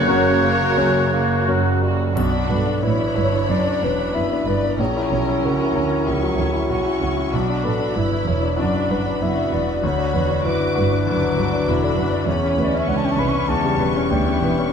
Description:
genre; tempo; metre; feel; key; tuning
classical, romantic movement for piano and orchestra; 84-101 BPM; 4/4; rubato; B minor; A4 = 441 Hz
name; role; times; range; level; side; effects
bright grand piano; melody; 0.0-14.7 s; F#1 to C#5; -22 LUFS; left 4 dB; none
warm symphonic violin section; melody; 0.0-14.7 s; C#5 to D6; -32 LUFS; left 3 dB; none
dark clarinet; second line; 0.0-14.7 s; A#3 to C#6; -26 LUFS; left 2 dB; none
dark symphonic violin section; second line; 0.0-14.7 s; E4 to C#5; -30 LUFS; left 2 dB; none
mellow hollow small flute group; second line; 0.0-1.8 s; F#6; -23 LUFS; left 4 dB; none
warm oboe; second line; 0.0-1.8 s; C#5; -27 LUFS; right 4 dB; none
warm symphonic viola section; accompaniment; 0.0-14.7 s; A#3 to F#4; -27 LUFS; right 4 dB; none
clear trombone section; sustained chords; 0.0-1.8 s; C#3 to F#3; -28 LUFS; right 4 dB; none
mellow French horn section; sustained chords; 0.0-1.8 s; A#3 to F#4; -27 LUFS; left 2 dB; none
clear trumpet; stabs; 0.0-1.8 s; C#5; -28 LUFS; right 6 dB; none
rich symphonic cello section; bass; 0.0-14.7 s; C2 to D3; -27 LUFS; right 4 dB; none
mellow bassoon; accompaniment; 0.1-2.2 s; F#3 to C#4; -26 LUFS; right 4 dB; none
rich symphonic double bass section; bass; 0.1-14.7 s; E1 to F#2; -25 LUFS; right 5 dB; none
timpani; percussion; 2.2-3.1 s; B2; -31 LUFS; equal; none
triangle; percussion; 2.2-3.5 s; none; -41 LUFS; left 4 dB; none
room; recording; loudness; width
light reverb; close, detailed microphones; -17 LUFS; side -7 dB against mid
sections
0.0-2.2 A section; 2.2-14.7 B section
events
none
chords
0.0 F#; 2.2 Bm; 4.8 F#7/A#; 7.3 Bm; 12.3 C#m7b5/E

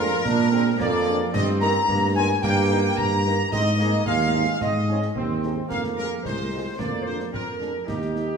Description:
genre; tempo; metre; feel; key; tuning
military-style march for wind band; 110 BPM; 2/4; straight; Ab major; A4 = 444 Hz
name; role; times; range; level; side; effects
clear trumpet section; melody; 0.0-8.4 s; G4 to Bb5; -29 LUFS; equal; none
hollow small flute group; second line; 0.0-8.4 s; G4 to Bb5; -29 LUFS; left 3 dB; none
warm woodwind section; second line; 0.0-8.4 s; G4 to Bb5; -31 LUFS; equal; none
dark French horn section; accompaniment; 0.0-8.3 s; Bb3 to Bb4; -32 LUFS; left 2 dB; none
clear trombone section; sustained chords; 0.0-8.4 s; Ab3 to F4; -30 LUFS; right 3 dB; none
mellow tuba; bass; 0.0-8.3 s; C2 to Bb2; -24 LUFS; right 2 dB; none
concert snare drum, concert bass drum and clash cymbals; drums; 0.3-8.3 s; none; -33 LUFS; left 1 dB; none
room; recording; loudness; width
wet scoring stage reverb, RT60 1.9 s; studio reverb; -20 LUFS; side -6 dB against mid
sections
0.0-8.4 A section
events
none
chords
0.0 Bb9; 1.3 Eb/G; 3.5 Ab; 5.7 Fm; 6.8 Bb7/F

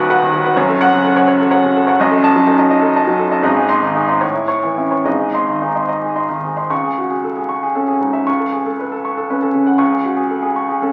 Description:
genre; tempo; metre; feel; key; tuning
classical, romantic character piece for solo piano; 70-86 BPM (dotted quarters); 6/8; rubato; C# minor; A4 = 438 Hz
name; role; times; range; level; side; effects
clear upright piano; solo; 0.0-10.9 s; D#1 to C#6; -16 LUFS; equal; none
room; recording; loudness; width
wet recital hall reverb, RT60 1.6 s; very old 78 rpm record, vinyl crackle; -16 LUFS; mono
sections
0.0-6.7 A section; 6.7-10.9 B section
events
none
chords
0.0 B/D#; 0.6 F#m; 2.0 D#dim/F#; 3.5 G#; 4.2 A; 5.1 G#; 6.7 C#5; 8.3 F#m/C# (rootless); 9.8 C#5

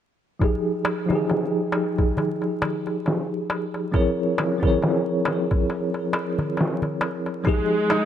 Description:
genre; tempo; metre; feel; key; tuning
trip hop; 68 BPM; 4/4; swing 57% on 16ths; F minor; A4 = 443 Hz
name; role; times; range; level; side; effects
bell-like tine electric piano; accompaniment; 0.4-8.1 s; F3 to Db5; -23 LUFS; equal; fast stereo tremolo, low-pass filter, tape echo
trip hop sampler-style drum kit; drums; 0.4-8.1 s; hi-hat, kick drum, snare drum; -24 LUFS; equal; low-pass filter on hats, studio reverb, low-pass filter on kick, low-pass filter on snare
darbuka; percussion; 0.4-8.1 s; none; -29 LUFS; left 1 dB; none
clear symphonic string section; sustained chords; 7.5-8.1 s; Ab3; -24 LUFS; equal; none
concert harp; arpeggios; 7.9-8.1 s; Eb4; -22 LUFS; right 1 dB; vintage 12-bit sampler grit
room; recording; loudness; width
light reverb, small room reverb; vinyl crackle; -21 LUFS; side -10 dB against mid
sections
0.4-8.1 A section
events
filter sweep on tine electric piano 0.4-8.1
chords
0.4 Fm9; 3.9 C7b9b13/F; 7.5 Fm9

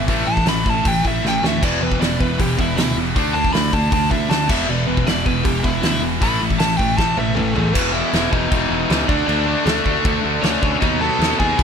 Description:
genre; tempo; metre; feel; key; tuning
punk rock; 157 BPM; 4/4; straight; unclear; A4 = 444 Hz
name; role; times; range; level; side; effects
crunchy overdriven guitar; melody; 0.0-11.6 s; A3 to B5; -23 LUFS; equal; tape echo
distorted electric guitar; riff; 0.0-11.6 s; E2 to D4; -24 LUFS; left 14 dB; distortion
distorted electric guitar; riff; 0.0-11.6 s; E2 to D4; -24 LUFS; right 12 dB; distortion
heavy high-gain guitar; riff; 0.0-11.6 s; E2 to D4; -24 LUFS; equal; distortion
modern bright picked electric bass; bass; 0.0-11.6 s; E1 to D#2; -25 LUFS; equal; none
loose indie drum kit; drums; 0.1-11.6 s; crash cymbal, hi-hat, kick drum, snare drum, toms; -22 LUFS; equal; none
room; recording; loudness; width
little or no reverb; none; -16 LUFS; side -7 dB against mid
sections
0.0-7.7 A section; 7.7-11.6 B section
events
overdriven electric guitar solo 0.0-7.7; drum fill 1.2-1.6, 7.0-7.7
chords
0.1 A5; 1.6 E5; 3.1 D5; 4.5 E5; 6.2 A5; 7.7 E5; 9.1 D5; 10.8 B/D#

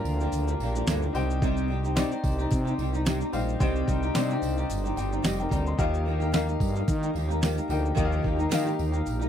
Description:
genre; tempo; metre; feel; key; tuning
acoustic pop; 110 BPM; 4/4; swing 55% on 16ths; unclear; A4 = 437 Hz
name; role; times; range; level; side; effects
flamenco guitar; accompaniment; 0.0-9.3 s; G2 to G4; -30 LUFS; equal; double-tracked left and right
warm upright piano; accompaniment; 0.0-9.3 s; D4 to C6; -33 LUFS; left 6 dB; none
growling FM bass; bass; 0.1-9.3 s; F1 to Eb3; -28 LUFS; equal; none
tambourine; percussion; 0.1-9.2 s; none; -44 LUFS; right 22 dB; none
dusty soul sampler-style drum kit; drums; 0.2-9.3 s; kick drum, shaker, snare drum; -28 LUFS; equal; overdrive
room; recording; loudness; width
little or no reverb; dry, close 1970s-style studio recording; -24 LUFS; side -9 dB against mid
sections
0.0-9.3 A section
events
upright piano fill 4.7-5.8, 9.1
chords
0.0 Gm7; 1.1 Cm; 5.8 Ebadd9

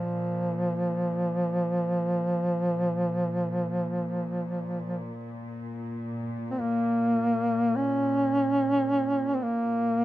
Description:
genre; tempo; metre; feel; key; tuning
caucasian folk, Caucasian lament; free time; none; none; Bb minor; A4 = 439 Hz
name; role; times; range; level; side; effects
mellow duduk; melody; 0.0-10.0 s; F3 to Db4; -25 LUFS; equal; none
warm studio cello section; drone; 0.0-10.0 s; Bb2; -35 LUFS; left 1 dB; none
room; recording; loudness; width
small room ambience; dry, close 1970s-style studio recording; -25 LUFS; side -15 dB against mid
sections
0.0-10.0 A section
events
none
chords
none

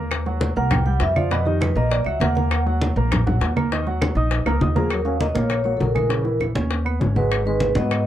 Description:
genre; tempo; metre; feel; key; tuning
Afro-Cuban jazz; 200 BPM; 4/4; straight; Eb minor; A4 = 440 Hz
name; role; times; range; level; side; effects
warm grand piano; accompaniment; 0.0-8.0 s; B2 to Eb6; -26 LUFS; right 4 dB; none
upright bass; bass; 0.0-8.1 s; Ab1 to Ab2; -22 LUFS; equal; none
bongos; percussion; 0.1-8.1 s; none; -29 LUFS; left 6 dB; none
claves; percussion; 0.1-8.1 s; none; -32 LUFS; right 5 dB; none
congas; percussion; 0.1-8.1 s; none; -25 LUFS; equal; none
vibraphone with medium mallets; melody; 0.6-2.6, 4.8-8.1 s; G4 to G5; -24 LUFS; right 1 dB; plate reverb
breathy trombone; second line; 4.8-8.0 s; Fb3 to Db4; -28 LUFS; left 3 dB; none
room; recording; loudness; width
light reverb; dark, warm production; -18 LUFS; side -12 dB against mid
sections
0.0-4.9 A section; 4.9-8.1 B section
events
vibraphone solo 0.0-4.9; drum fill 4.5-4.9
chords
0.1 Ebm; 0.7 C5; 1.3 G7alt; 1.9 Ebm; 4.9 Ebm7; 6.1 Bbdim; 6.7 Abmadd11; 7.3 Abm7

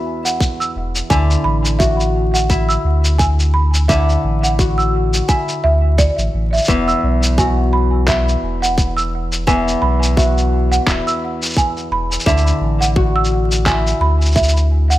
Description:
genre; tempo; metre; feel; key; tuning
folktronica; 86 BPM; 4/4; swing 56% on 16ths; unclear; A4 = 440 Hz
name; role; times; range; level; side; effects
Celtic harp; arpeggios; 0.0-15.0 s; E2 to F#4; -20 LUFS; left 2 dB; tape echo
folk marimba with medium hard mallets; second line; 0.3-15.0 s; D5 to E6; -20 LUFS; right 3 dB; tape echo
electronic shaker and handclaps; drums; 0.3-15.0 s; none; -22 LUFS; left 1 dB; none
electronic kick drum; drums; 0.4-14.5 s; none; -17 LUFS; equal; none
warm sub bass; bass; 0.8-15.0 s; D1 to D2; -16 LUFS; equal; none
room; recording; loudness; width
light reverb; vinyl crackle; -13 LUFS; side -15 dB against mid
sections
0.0-15.0 A section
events
none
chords
0.0 Esus2; 1.1 Dadd9; 6.7 Esus2; 12.3 Dadd9

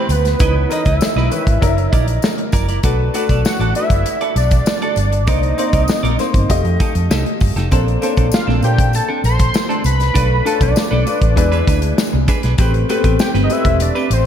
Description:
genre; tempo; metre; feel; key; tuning
polished 1980s jazz-funk pop; 98 BPM; 4/4; straight; unclear; A4 = 441 Hz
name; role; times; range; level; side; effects
fat analog lead; melody; 0.0-14.3 s; B4 to C6; -21 LUFS; right 1 dB; chorus, phaser, diffuse ambient delay
clear grand piano; accompaniment; 0.0-14.3 s; D#3 to Eb5; -22 LUFS; left 4 dB; wide subtle chorus
clean electric guitar; riff; 0.0-14.1 s; C4 to D#5; -25 LUFS; right 4 dB; lush chorus
vintage muted fingered electric bass; bass; 0.1-14.3 s; E1 to Bb2; -17 LUFS; equal; none
modern studio drum kit; drums; 0.1-14.2 s; hi-hat, kick drum, snare drum; -18 LUFS; equal; none
tambourine; percussion; 0.1-14.2 s; none; -35 LUFS; left 12 dB; none
room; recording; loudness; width
moderate lush hall reverb, RT60 1.9 s, small room ambience; dreamy mix soaked in reverb; -13 LUFS; side -9 dB against mid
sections
0.0-14.3 A section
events
none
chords
0.4 C#m9; 1.6 F#aug7; 2.8 Bm7; 5.3 Cm9; 6.5 F9; 7.7 Bbmaj9; 10.2 Bm7b5; 11.4 E7; 12.6 Am9

